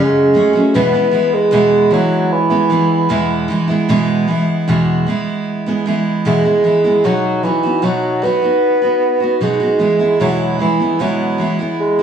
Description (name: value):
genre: acoustic pop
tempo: 76 BPM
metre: 4/4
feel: straight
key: E major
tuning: A4 = 440 Hz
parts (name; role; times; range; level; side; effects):
- mellow bassoon; melody; 0.0-12.0 s; E3 to B3; -14 LUFS; right 1 dB; none
- picked steel-string acoustic guitar; accompaniment; 0.0-12.0 s; E2 to G#4; -16 LUFS; right 1 dB; none
room: moderate plate reverb, RT60 2.3 s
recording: vinyl crackle, studio reverb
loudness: -12 LUFS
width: side -8 dB against mid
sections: 0.0-3.9 A section; 3.9-7.0 B section; 7.0-12.0 C section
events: none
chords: 0.0 F#madd9; 0.7 E; 7.0 B; 9.8 E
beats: | 0.72 1.51 2.30 3.09 | 3.88 4.67 5.46 6.25 | 7.04 7.83 8.62 9.42 | 10.21 11.00 11.79